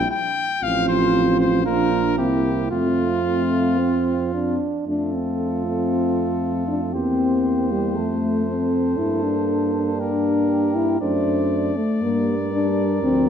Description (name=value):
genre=classical, brass quintet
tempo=117 BPM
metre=4/4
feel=rubato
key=F major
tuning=A4 = 440 Hz
part: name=clear trumpet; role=melody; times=0.0-13.3 s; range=F4 to G5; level=-28 LUFS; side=left 5 dB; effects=none
part: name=mellow bass trombone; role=bass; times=0.0-13.3 s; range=A1 to G2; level=-25 LUFS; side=right 1 dB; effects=none
part: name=mellow flugelhorn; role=second line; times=0.6-13.3 s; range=E4 to C5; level=-26 LUFS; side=right 8 dB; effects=none
part: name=mellow French horn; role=accompaniment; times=0.6-13.3 s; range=G3 to E4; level=-22 LUFS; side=left 4 dB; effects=none
part: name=mellow trombone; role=accompaniment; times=0.6-13.3 s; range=F3 to D4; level=-27 LUFS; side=right 5 dB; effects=none
room=moderate concert hall reverb, RT60 1.8 s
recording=dark, warm production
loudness=-18 LUFS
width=side -8 dB against mid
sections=0.0-4.9 A section; 4.9-13.3 B section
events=none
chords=0.0 N.C.; 0.6 F/A; 1.7 Bb; 2.2 C7; 2.7 F; 6.9 C7/E; 8.0 F; 9.0 Gm; 11.0 D7/F#; 12.0 Gm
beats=0.12 | 0.63 1.14 1.66 2.18 | 2.72 3.26 3.80 4.34 | 4.88 5.40 5.92 6.42 | 6.94 7.45 7.96 8.47 | 8.97 9.48 9.99 10.50 | 11.01 11.51 12.02 12.53 | 13.03